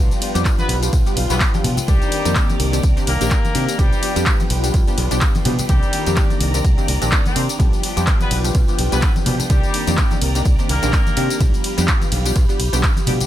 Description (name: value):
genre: filtered disco house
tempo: 126 BPM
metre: 4/4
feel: swing 57% on 16ths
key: C minor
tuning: A4 = 438 Hz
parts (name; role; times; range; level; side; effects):
- funky polysynth comp; accompaniment; 0.0-13.3 s; Eb3 to G4; -25 LUFS; equal; chorus, phaser, sidechain pumping
- phased string machine; sustained chords; 0.0-13.3 s; Eb3 to B5; -28 LUFS; equal; ensemble chorus, phaser, vintage 12-bit sampler grit, sidechain pumping
- direct-recorded clean electric guitar; riff; 0.0-11.4 s; Eb3 to G4; -30 LUFS; left 7 dB; sidechain pumping
- fingered electric bass; bass; 0.0-13.2 s; Bb1 to C3; -21 LUFS; equal; tube saturation, sidechain pumping
- punchy analog drum machine; drums; 0.1-13.3 s; handclaps, hi-hat, ride cymbal, tambourine; -24 LUFS; left 1 dB; sidechain pumping on hats, sidechain pumping on perc, sidechain pumping on cymbals
- tambourine and congas; percussion; 0.1-13.3 s; none; -29 LUFS; left 3 dB; sidechain pumping on perc
- electronic kick drum; drums; 0.5-12.9 s; none; -18 LUFS; equal; none
- bright horn section; melody; 0.6-11.4 s; G3 to C5; -27 LUFS; left 2 dB; sidechain pumping, digital delay
room: little or no reverb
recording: none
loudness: -15 LUFS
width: side -12 dB against mid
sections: 0.0-13.3 A section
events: none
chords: 0.0 G7/B; 1.9 Cm9; 3.8 G7/B; 5.7 Cm9; 7.6 G7/B; 9.5 Cm9; 11.4 G7/B